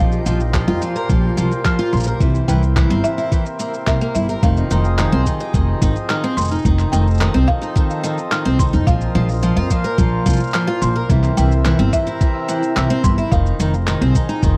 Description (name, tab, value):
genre	folktronica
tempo	108 BPM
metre	4/4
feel	straight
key	F minor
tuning	A4 = 440 Hz
part	buzzing marimba with hard mallets	second line	0.0-13.6 s	E5 to F6	-28 LUFS	equal	tape echo
part	hand-pumped harmonium	sustained chords	0.0-14.6 s	Bb2 to F5	-28 LUFS	equal	none
part	picked twelve-string acoustic guitar	arpeggios	0.0-14.6 s	Eb3 to Bb4	-23 LUFS	equal	tape echo
part	upright bass	bass	0.0-14.6 s	F1 to F2	-20 LUFS	equal	none
part	backwards swelling texture	texture	0.0-4.4 s	G4 to G5	-40 LUFS	equal	none
part	electronic cabasa and handclaps	drums	0.1-14.5 s	none	-30 LUFS	equal	none
part	electronic kick drum	drums	0.5-14.5 s	none	-20 LUFS	equal	none
room	little or no reverb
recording	dry, close 1970s-style studio recording, vinyl crackle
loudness	-17 LUFS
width	mono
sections	0.0-4.4 A section; 4.4-14.6 B section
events	none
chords	0.0 Bbsus2; 2.2 C7; 4.4 Fm7; 6.7 F7; 8.9 Bbsus2; 11.1 C7; 13.3 Fm7